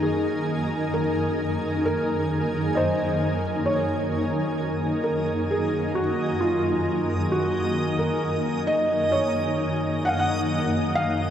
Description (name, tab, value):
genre	ambient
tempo	66 BPM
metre	4/4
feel	straight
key	unclear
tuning	A4 = 439 Hz
part	felt-muted upright piano	melody	0.0-11.3 s	F4 to Gb5	-26 LUFS	right 1 dB	shimmer reverb, diffuse ambient delay
part	shimmering ambient pad	sustained chords	0.0-11.3 s	Gb2 to Bb4	-24 LUFS	equal	chorus, built-in reverb, shimmer reverb
part	backwards swelling texture	texture	4.8-11.3 s	Eb5 to Eb6	-33 LUFS	right 1 dB	built-in reverb, shimmer reverb
room	wet huge ambient reverb, RT60 8.5 s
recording	dark, warm production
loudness	-22 LUFS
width	side -9 dB against mid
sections	0.0-3.7 A section; 3.7-11.3 B section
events	none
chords	0.0 Absus2/Gb